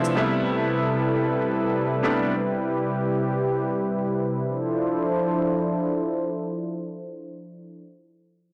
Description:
amapiano; free time; D dorian; A4 = 440 Hz
bright grand piano; accompaniment; 0.0-2.3 s; C3 to B5; -27 LUFS; equal; low-pass filter
warm analog pad; sustained chords; 0.0-7.8 s; C3 to D5; -26 LUFS; equal; chorus, low-pass filter
moderate digital room reverb, RT60 1.2 s, small room ambience; blown-out, overdriven recording, overdrive; -25 LUFS; mono
0.0-4.4 A section; 4.4-8.5 B section
grand piano fill 0.0; filter sweep 0.0-4.4
0.2 Am9; 4.4 Dm9

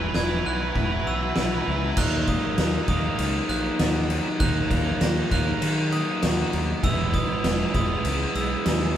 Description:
post-rock; 99 BPM; 4/4; straight; A4 = 440 Hz
electric guitar through a small old amp; arpeggios; 0.0-9.0 s; E2 to G#4; -33 LUFS; left 3 dB
glockenspiel with hard plastic mallets; arpeggios; 0.0-9.0 s; D#6 to A#6; -32 LUFS; right 1 dB
cranked stack guitar; riff; 0.0-9.0 s; D#3 to B4; -28 LUFS; right 3 dB; overdrive
distorted electric guitar; riff; 0.0-2.0 s; E3 to F#3; -32 LUFS; left 6 dB; distortion
fuzz fingered electric bass; bass; 0.0-9.0 s; E1 to D#3; -28 LUFS; equal; overdrive
oversized low-tuned drum kit; drums; 0.1-8.8 s; crash cymbal, kick drum, snare drum; -25 LUFS; equal
light reverb; band playing live in one room; -21 LUFS; side -10 dB against mid
0.0-2.0 A section; 2.0-9.0 B section
build-up 0.0-2.0
0.0 Esus2; 2.0 D#m; 6.8 Emaj7

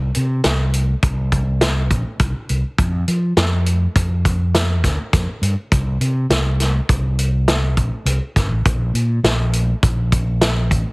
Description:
progressive instrumental, band music in an uneven meter; 102 BPM; 5/4; straight; A4 = 440 Hz
fretless electric bass; bass; 0.0-10.8 s; G1 to F3; -18 LUFS; equal
vintage drum kit; drums; 0.1-10.8 s; hi-hat, kick drum, snare drum; -19 LUFS; equal
little or no reverb; heavily compressed radio sound; -16 LUFS; side -28 dB against mid
0.0-10.9 A section

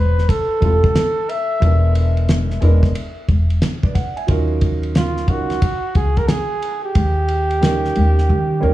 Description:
hip hop, jazz-hop; 90 BPM; 4/4; swing 65% on 16ths; A4 = 439 Hz
breathy flugelhorn; melody; 0.0-8.7 s; E#4 to E5; -21 LUFS; right 1 dB; tape echo
upright bass; bass; 0.0-8.7 s; E1 to D#3; -16 LUFS; equal
cloth-damped thuddy drum kit; drums; 0.2-8.2 s; hi-hat, kick drum, ride cymbal, snare drum; -18 LUFS; equal
dark grand piano; accompaniment; 0.6-8.7 s; F#3 to G#5; -24 LUFS; right 3 dB
small room ambience; -15 LUFS; side -15 dB against mid
0.0-8.7 A section
drum fill 8.3-8.7; grand piano fill 8.3-8.7
0.0 Fmaj9; 1.6 E7#11; 4.3 D#m9; 7.0 D#7

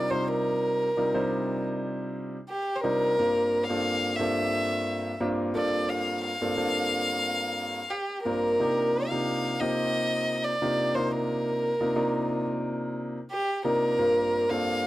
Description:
jazz; 89 BPM; 4/4; straight; C minor; A4 = 445 Hz
rich violin; melody; 0.0-14.9 s; G4 to F5; -27 LUFS; equal
clear grand piano; accompaniment; 0.0-14.9 s; G2 to C5; -28 LUFS; equal
light reverb; dry, close 1970s-style studio recording; -25 LUFS; side -16 dB against mid
0.0-14.9 A section
0.0 Cm11; 3.2 Gm11; 8.6 Cm11; 14.0 Gm11

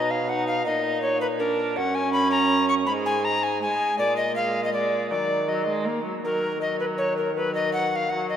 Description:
classical, renaissance-style consort dance; 162 BPM; 3/4; straight; Eb minor; A4 = 439 Hz
alto recorder; melody; 0.0-8.4 s; Bb4 to Db6; -24 LUFS; left 1 dB
rich viola; accompaniment; 0.0-8.4 s; Gb3 to D#4; -28 LUFS; right 2 dB
mellow bassoon; bass; 0.0-8.4 s; Gb2 to Eb3; -30 LUFS; right 1 dB
wet church reverb, RT60 3.0 s; -22 LUFS; side -9 dB against mid
0.0-6.2 A section; 6.2-8.4 B section
0.0 B; 0.7 Bbsus4; 1.4 Bb; 1.8 Gb; 2.9 N.C.; 4.0 Bb7; 5.1 Ebm

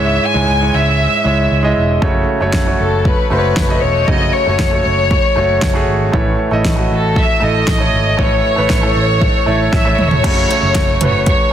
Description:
piano-driven pop; 117 BPM; 4/4; straight; A4 = 439 Hz
warm chamber violin section; melody; 0.0-11.5 s; A4 to G#5; -16 LUFS; left 2 dB
bright concert grand piano; accompaniment; 0.0-11.5 s; G#2 to D#5; -17 LUFS; right 2 dB
picked electric bass; bass; 0.0-11.3 s; E1 to C#2; -18 LUFS; equal
deep house drum kit; drums; 2.0-11.4 s; crash cymbal, hi-hat, kick drum, snare drum, toms; -17 LUFS; equal; overdrive
light reverb; dense, heavily limited modern master; -11 LUFS; side -10 dB against mid
0.0-10.2 A section; 10.2-11.5 B section
drum fill 9.7-10.2
0.0 C#m; 2.0 F#m; 6.1 A; 10.2 F#m

